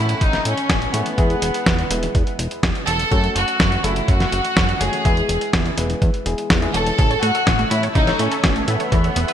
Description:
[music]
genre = italo disco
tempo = 124 BPM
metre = 4/4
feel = straight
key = unclear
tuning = A4 = 440 Hz
[part]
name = rich chamber violin section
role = melody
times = 0.0-9.3 s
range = B3 to A4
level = -22 LUFS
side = equal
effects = digital delay
[part]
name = dark grand piano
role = stabs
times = 0.0-7.0 s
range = A2 to C#5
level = -27 LUFS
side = left 2 dB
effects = none
[part]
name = fat analog bass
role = bass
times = 0.0-9.3 s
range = E1 to A2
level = -23 LUFS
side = equal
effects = none
[part]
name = dusty soul sampler-style drum kit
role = drums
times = 0.1-9.3 s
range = hi-hat, snare drum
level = -22 LUFS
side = equal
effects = gated reverb
[part]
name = electronic kick drum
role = drums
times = 0.2-9.0 s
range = none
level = -20 LUFS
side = equal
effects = none
[part]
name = lush unison pad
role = sustained chords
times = 7.0-9.3 s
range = A3 to E6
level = -27 LUFS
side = equal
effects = chorus, phaser
[part]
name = wide unison pluck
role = arpeggios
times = 7.0-9.3 s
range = C#3 to E5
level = -25 LUFS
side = right 2 dB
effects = ping-pong delay
[sound]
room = moderate lush hall reverb, RT60 2.0 s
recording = bright 1980s-style digital production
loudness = -16 LUFS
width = side -9 dB against mid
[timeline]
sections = 0.0-9.3 A section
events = none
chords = 0.0 A; 1.2 E; 3.1 F#m; 5.0 E; 7.0 A

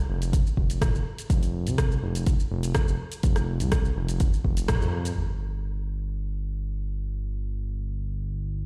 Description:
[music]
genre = afro house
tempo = 124 BPM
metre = 4/4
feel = straight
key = unclear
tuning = A4 = 440 Hz
[part]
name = smooth gliding synth bass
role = bass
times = 0.0-8.7 s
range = F1 to F2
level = -31 LUFS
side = equal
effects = sidechain pumping
[part]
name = deep house drum kit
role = drums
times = 0.2-5.2 s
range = hi-hat, rim click, shaker, toms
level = -35 LUFS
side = equal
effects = low-pass filter on hats, low-pass filter on perc, low-pass filter on snare, low-pass filter on toms, low-pass filter on room
[part]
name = electronic kick drum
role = drums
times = 0.3-4.8 s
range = none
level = -26 LUFS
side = equal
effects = none
[sound]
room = light reverb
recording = played on a big sound system in a bare room, stone room reverb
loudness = -27 LUFS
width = mono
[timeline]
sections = 0.0-5.2 A section; 5.2-8.7 B section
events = band accent 4.7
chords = none

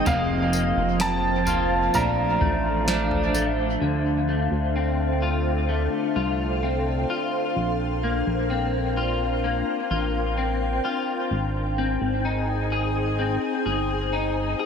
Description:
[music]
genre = dream pop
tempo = 64 BPM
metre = 4/4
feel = straight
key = Bb major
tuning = A4 = 440 Hz
[part]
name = felt-muted upright piano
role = melody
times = 0.0-3.3 s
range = F5 to Bb5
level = -26 LUFS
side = right 1 dB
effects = dub echo
[part]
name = electric guitar at the edge of break-up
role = accompaniment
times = 0.0-4.3 s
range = F2 to D4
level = -28 LUFS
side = right 4 dB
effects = tremolo, lush chorus, dub echo
[part]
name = ethereal airy pad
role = sustained chords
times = 0.0-14.7 s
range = A3 to Ab5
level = -28 LUFS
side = equal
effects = ensemble chorus, built-in reverb, phaser
[part]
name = electric guitar at the edge of break-up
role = arpeggios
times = 0.0-14.7 s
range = F2 to Ab4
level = -27 LUFS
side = left 4 dB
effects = ensemble chorus, dub echo
[part]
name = chorused synth bass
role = bass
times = 0.0-14.6 s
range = F1 to D2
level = -27 LUFS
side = equal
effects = none
[part]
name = drifting glass-harmonics texture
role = texture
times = 0.0-0.5 s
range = Eb5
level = -36 LUFS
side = left 3 dB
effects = chorus, built-in reverb, dub echo
[part]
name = soft vintage rhythm box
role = drums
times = 0.1-3.6 s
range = kick drum, snare drum, tambourine, toms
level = -29 LUFS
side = right 1 dB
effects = none
[sound]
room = moderate spring reverb, RT60 2.4 s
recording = echo-heavy mix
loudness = -22 LUFS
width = side -6 dB against mid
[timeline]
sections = 0.0-3.8 A section; 3.8-14.7 B section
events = none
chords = 0.1 Fsus4; 1.9 Bbmaj7; 3.8 Dm7; 7.6 Bbadd9; 11.3 Ab

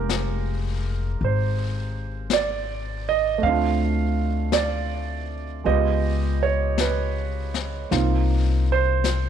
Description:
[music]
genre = jazz ballad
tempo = 54 BPM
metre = 4/4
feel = swing 68% on 8ths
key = unclear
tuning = A4 = 440 Hz
[part]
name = warm concert grand piano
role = accompaniment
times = 0.0-9.3 s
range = Ab3 to F5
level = -24 LUFS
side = right 10 dB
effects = none
[part]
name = upright bass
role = bass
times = 0.0-9.3 s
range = F1 to D2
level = -24 LUFS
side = left 2 dB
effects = none
[part]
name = jazz brush drum kit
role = drums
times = 0.1-9.3 s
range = brushed snare drum, hi-hat, snare drum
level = -30 LUFS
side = left 11 dB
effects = none
[sound]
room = little or no reverb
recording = 1960s-style stereo with parts hard left and right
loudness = -21 LUFS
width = side -9 dB against mid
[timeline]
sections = 0.0-9.3 A section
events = none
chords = 0.0 Fm11; 3.4 Dm7; 5.6 Db7#11; 7.9 Cm11

